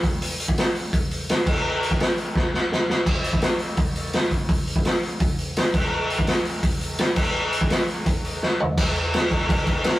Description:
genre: punk.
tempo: 168 BPM.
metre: 4/4.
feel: straight.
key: none.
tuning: none.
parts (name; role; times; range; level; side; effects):
raw garage drum kit; drums; 0.0-9.9 s; crash cymbal, hi-hat, kick drum, snare drum, toms; -20 LUFS; equal; none.
room: little or no reverb.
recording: rough rehearsal-room recording.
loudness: -20 LUFS.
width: side -16 dB against mid.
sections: 0.0-8.8 A section; 8.8-10.0 B section.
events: drum fill 2.4-3.1, 8.4-8.8.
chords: none.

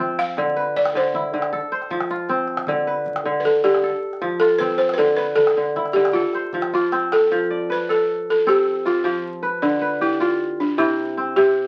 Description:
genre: west african traditional, West African string and xylophone music.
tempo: 104 BPM (dotted quarters).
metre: 12/8.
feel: straight.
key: F lydian.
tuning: A4 = 440 Hz.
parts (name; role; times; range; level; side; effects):
balafon; melody; 0.0-11.7 s; D4 to F5; -21 LUFS; equal; none.
kora; arpeggios; 0.0-11.7 s; C3 to D5; -25 LUFS; equal; none.
calabash; percussion; 0.2-7.3 s; none; -34 LUFS; equal; none.
room: moderate studio reverb, RT60 0.5 s.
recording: very old 78 rpm record, vinyl crackle.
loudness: -20 LUFS.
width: mono.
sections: 0.0-7.3 A section; 7.3-11.7 B section.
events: drum fill 6.7-7.3.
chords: 0.4 Dm13; 1.5 F; 2.7 Gadd9/D (rootless); 3.8 F; 5.0 D5; 6.2 F; 9.6 Dm; 10.8 C.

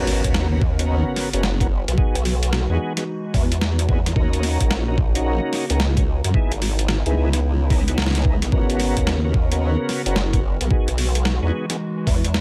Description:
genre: glitch hop.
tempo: 110 BPM.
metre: 4/4.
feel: swing 63% on 16ths.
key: G# minor.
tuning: A4 = 440 Hz.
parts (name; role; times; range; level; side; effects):
warbly tape-like pad; sustained chords; 0.7-12.4 s; C#3 to A#4; -33 LUFS; equal; chorus, built-in reverb, sidechain pumping.
tonewheel organ; stabs; 0.0-11.8 s; B3 to A#4; -30 LUFS; equal; chorus vibrato, slow rotary speaker, sidechain pumping, digital delay.
formant-sweep wobble bass; bass; 0.0-12.4 s; F#1 to F#2; -23 LUFS; equal; chorus.
impact; sound effects; 0.0-2.0 s; none; -34 LUFS; equal; none.
boom bap sampler-style drum kit; drums; 0.1-12.4 s; hi-hat, snare drum; -28 LUFS; equal; overdrive.
electronic kick drum; drums; 0.2-12.2 s; none; -22 LUFS; equal; overdrive.
room: digital ambience.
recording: none.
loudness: -20 LUFS.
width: mono.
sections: 0.0-12.4 A section.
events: impact 0.0-2.0.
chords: 0.0 G#m11 (rootless); 2.0 Emaj9; 4.2 D#m7; 6.3 C#m9; 8.5 G#m11; 10.7 Emaj9.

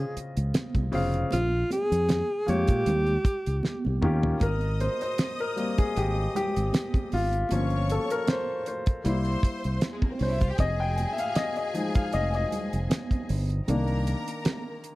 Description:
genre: lush 1970s-style soul.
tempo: 78 BPM.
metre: 4/4.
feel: swing 54% on 16ths.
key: Ab major.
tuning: A4 = 439 Hz.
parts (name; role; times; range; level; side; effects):
breathy alto saxophone; melody; 0.0-4.0 s; F4 to Ab4; -27 LUFS; equal; none.
warm grand piano; accompaniment; 0.0-15.0 s; Db3 to G5; -30 LUFS; left 2 dB; none.
fingered electric bass; bass; 0.0-14.1 s; F1 to Bb2; -27 LUFS; equal; none.
damped 70s drum kit; drums; 0.2-15.0 s; hi-hat, kick drum, snare drum, toms; -26 LUFS; equal; none.
congas; percussion; 0.5-14.6 s; none; -36 LUFS; right 3 dB; none.
clear studio string section; second line; 4.4-14.8 s; Ab3 to Eb6; -37 LUFS; left 2 dB; none.
room: small room ambience.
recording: dry, close 1970s-style studio recording.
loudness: -24 LUFS.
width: side -18 dB against mid.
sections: 0.0-4.4 A section; 4.4-15.0 B section.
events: drum fill 3.6-4.4; grand piano solo 4.4-15.0.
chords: 0.0 Dbmaj9; 1.3 Bbm7; 2.9 Eb9; 4.4 Abmaj7; 7.5 Gm7b5; 9.1 C7; 10.6 Fm9; 13.7 Cm7.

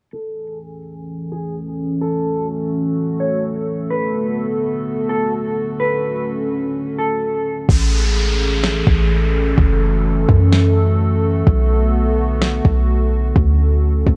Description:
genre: hip hop, atmospheric cloud-rap.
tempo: 127 BPM.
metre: 4/4.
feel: half-time.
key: unclear.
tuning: A4 = 440 Hz.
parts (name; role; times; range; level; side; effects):
mellow electric guitar; melody; 0.1-7.7 s; G#4 to C#5; -26 LUFS; equal; subtle chorus, low-pass filter, tape echo.
dark analog pad; sustained chords; 0.1-14.2 s; D3 to G#5; -23 LUFS; equal; chorus, sidechain pumping, low-pass filter.
warm 808-style bass; bass; 7.7-14.2 s; F#1 to F#2; -18 LUFS; equal; none.
smooth R&B drum kit; drums; 7.7-14.2 s; kick drum, snare drum; -18 LUFS; equal; vintage 12-bit sampler grit.
downlifter; sound effects; 7.7-11.5 s; none; -28 LUFS; equal; none.
room: little or no reverb.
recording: worn, warbling old tape, cassette tape, warbly pitch drift.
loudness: -18 LUFS.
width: mono.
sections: 0.1-7.7 A section; 7.7-14.2 B section.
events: filter sweep 0.1-7.7; hi-hats muted 7.7-14.2.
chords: 0.1 Amaj7; 2.0 F#m7; 3.9 Bm7; 5.8 Dmaj7; 7.7 Amaj7; 9.6 F#m7; 11.5 Bm7; 13.4 Dmaj7.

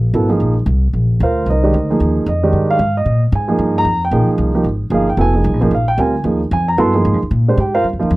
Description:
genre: modal jazz.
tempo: 226 BPM.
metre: 4/4.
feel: swing 60% on 8ths.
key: Bb mixolydian.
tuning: A4 = 436 Hz.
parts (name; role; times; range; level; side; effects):
upright bass; bass; 0.0-8.2 s; F1 to Bb2; -16 LUFS; equal; none.
dark baby grand piano; accompaniment; 0.1-8.1 s; Eb3 to C6; -15 LUFS; right 2 dB; none.
room: little or no reverb.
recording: dry, close 1970s-style studio recording.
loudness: -13 LUFS.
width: side -19 dB against mid.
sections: 0.0-8.2 A section.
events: none.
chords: 0.0 Bb9sus4.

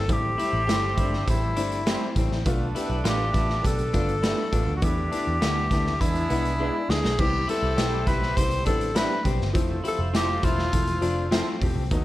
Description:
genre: uptempo 1960s-style soul.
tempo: 102 BPM.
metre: 4/4.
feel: straight.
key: unclear.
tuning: A4 = 440 Hz.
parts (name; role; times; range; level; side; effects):
breathy tenor saxophone; melody; 0.0-11.6 s; E4 to C5; -28 LUFS; left 1 dB; none.
electric guitar at the edge of break-up; riff; 0.0-11.9 s; A3 to G4; -35 LUFS; left 5 dB; wide subtle chorus.
vintage muted picked electric bass; bass; 0.0-12.0 s; E1 to E2; -28 LUFS; equal; none.
warm horn section; second line; 0.1-12.0 s; D4 to D5; -36 LUFS; right 4 dB; none.
warm baby grand piano; accompaniment; 0.1-12.0 s; F3 to G4; -31 LUFS; left 2 dB; none.
raw garage drum kit; drums; 0.1-12.0 s; crash cymbal, hi-hat, kick drum, snare drum; -27 LUFS; equal; none.
electric guitar through a small old amp; stabs; 0.7-11.5 s; G#3 to C5; -34 LUFS; right 6 dB; analog chorus.
room: little or no reverb.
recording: none.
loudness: -22 LUFS.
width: side -16 dB against mid.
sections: 0.0-12.0 A section.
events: drum fill 6.6-7.2.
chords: 0.1 Am7; 2.5 Bm7b5; 4.8 E7sus4; 6.0 E7; 7.2 Cmaj7; 9.6 Fmaj7.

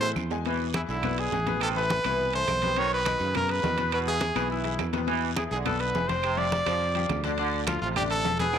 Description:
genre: latin, salsa.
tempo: 208 BPM.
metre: 4/4.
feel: straight.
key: unclear.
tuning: A4 = 440 Hz.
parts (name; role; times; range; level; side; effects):
bright concert grand piano; accompaniment; 0.0-8.6 s; B2 to G#5; -32 LUFS; left 11 dB; none.
modern bright fingered electric bass; bass; 0.0-8.6 s; E1 to A2; -32 LUFS; right 1 dB; none.
congas; percussion; 0.0-8.6 s; none; -34 LUFS; equal; none.
timbales; percussion; 0.0-8.6 s; none; -37 LUFS; right 13 dB; none.
claves; percussion; 0.2-8.6 s; none; -39 LUFS; right 15 dB; none.
guiro; percussion; 0.2-8.6 s; none; -44 LUFS; right 15 dB; none.
brilliant trombone section; second line; 0.5-8.6 s; B2 to F3; -34 LUFS; right 10 dB; none.
brilliant trumpet; melody; 0.7-8.6 s; E4 to D5; -28 LUFS; right 1 dB; slapback echo.
room: moderate spring reverb, RT60 1.4 s, small room ambience.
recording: 1960s-style stereo with parts hard left and right.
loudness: -24 LUFS.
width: side -8 dB against mid.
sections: 0.5-8.6 A section.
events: drum fill 0.0-0.5.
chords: 0.5 E; 1.6 Amadd9; 2.8 B; 3.9 E; 6.2 Fsus2; 7.4 Dm.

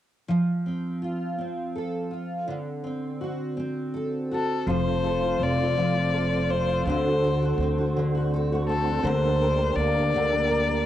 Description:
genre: six-eight pop ballad.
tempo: 55 BPM (dotted quarters).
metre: 6/8.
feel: straight.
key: F major.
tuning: A4 = 439 Hz.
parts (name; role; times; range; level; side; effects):
picked steel-string acoustic guitar; accompaniment; 0.3-10.9 s; D3 to Bb4; -27 LUFS; right 1 dB; double-tracked left and right, cassette tape.
warm violin; melody; 4.3-10.9 s; A4 to D5; -26 LUFS; left 4 dB; cassette tape, analog delay.
percussive tonewheel organ; sustained chords; 4.7-10.9 s; C3 to C5; -29 LUFS; right 1 dB; chorus vibrato, fast rotary speaker, cassette tape.
upright bass; bass; 4.7-10.9 s; F1 to D2; -28 LUFS; right 1 dB; none.
room: light reverb, small room reverb.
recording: home recording on cassette.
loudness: -23 LUFS.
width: side -12 dB against mid.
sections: 0.3-4.7 A section; 4.7-10.9 B section.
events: none.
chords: 0.3 F; 2.5 D7; 4.7 F; 6.9 D7; 9.0 Gm/D.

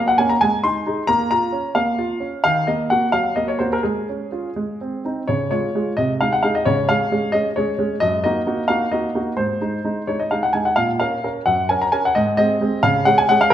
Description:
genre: classical-period piano sonatina.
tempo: 87 BPM (dotted quarters).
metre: 6/8.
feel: rubato.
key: Db major.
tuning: A4 = 441 Hz.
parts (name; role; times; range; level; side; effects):
clear baby grand piano; solo; 0.0-13.5 s; Gb2 to C6; -17 LUFS; equal; none.
room: wet recital hall reverb, RT60 1.4 s.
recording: none.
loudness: -17 LUFS.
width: side -11 dB against mid.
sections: 0.0-5.3 A section; 5.3-13.5 B section.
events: none.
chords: 0.4 Ab; 1.1 Bbm; 2.4 Ebm; 3.1 Gbmaj7#11; 3.8 Db/Ab; 4.6 Ab; 5.3 Db; 6.0 Ab/C; 6.7 Db; 8.0 Ebm/Gb; 9.4 Ab; 10.8 Bbm; 11.5 Gb; 12.2 Ab; 12.8 Db5.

